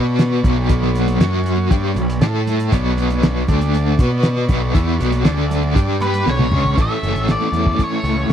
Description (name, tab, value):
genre	psychedelic rock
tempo	119 BPM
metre	4/4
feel	straight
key	unclear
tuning	A4 = 438 Hz
part	combo organ	sustained chords	0.0-8.3 s	D4 to D6	-30 LUFS	right 3 dB	none
part	overdriven electric guitar	riff	0.0-8.3 s	A2 to B4	-20 LUFS	left 1 dB	tremolo
part	fuzz picked electric bass	bass	0.0-8.3 s	F#1 to B2	-19 LUFS	equal	overdrive
part	cloth-damped thuddy drum kit	drums	0.2-8.3 s	hi-hat, kick drum, snare drum, toms	-17 LUFS	equal	none
part	congas	percussion	0.4-7.7 s	none	-31 LUFS	right 18 dB	none
part	octave-fuzz lead guitar	melody	6.0-8.3 s	B4 to E5	-22 LUFS	equal	wah, distortion, slapback echo
room	little or no reverb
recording	dry, close 1970s-style studio recording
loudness	-15 LUFS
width	side -9 dB against mid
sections	0.0-6.8 A section; 6.8-8.3 B section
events	drum fill 6.3-6.8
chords	0.0 Bmadd9; 1.2 F#5; 1.7 Bmadd9; 2.2 A5; 2.7 Bmadd9; 3.5 D5; 4.0 Bmadd9; 5.3 D5; 5.8 G5; 6.3 Bmadd9; 6.8 A